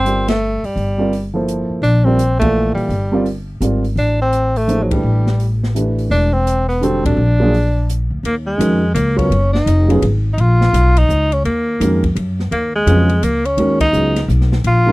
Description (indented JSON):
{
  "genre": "modal jazz",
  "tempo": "169 BPM",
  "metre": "3/4",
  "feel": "swing 64% on 8ths",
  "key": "G dorian, Eb minor from 8.2 s",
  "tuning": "A4 = 441 Hz",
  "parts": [
    { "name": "warm tenor saxophone", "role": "melody", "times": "0.0-14.9 s", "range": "F#3 to F4", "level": "-18 LUFS", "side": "equal", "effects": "none" },
    { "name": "warm grand piano", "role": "accompaniment", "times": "0.0-14.9 s", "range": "Bb2 to F5", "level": "-18 LUFS", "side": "right 1 dB", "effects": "none" },
    { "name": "upright bass", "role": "bass", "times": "0.0-14.9 s", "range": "E1 to Gb2", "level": "-16 LUFS", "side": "equal", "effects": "none" },
    { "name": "open jazz drum kit", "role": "drums", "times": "0.1-14.8 s", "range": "hi-hat, kick drum, ride cymbal, snare drum", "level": "-26 LUFS", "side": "equal", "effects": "none" }
  ],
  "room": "light reverb",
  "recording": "dry, close 1970s-style studio recording",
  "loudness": "-13 LUFS",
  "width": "side -20 dB against mid",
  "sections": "0.0-8.2 A section; 8.2-14.9 B section",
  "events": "band accent 0.2, 2.4, 4.9, 7.0, 13.8; break 7.9-8.2",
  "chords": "0.0 Gm11; 4.0 Am11; 7.2 Bb; 8.2 Ebm11"
}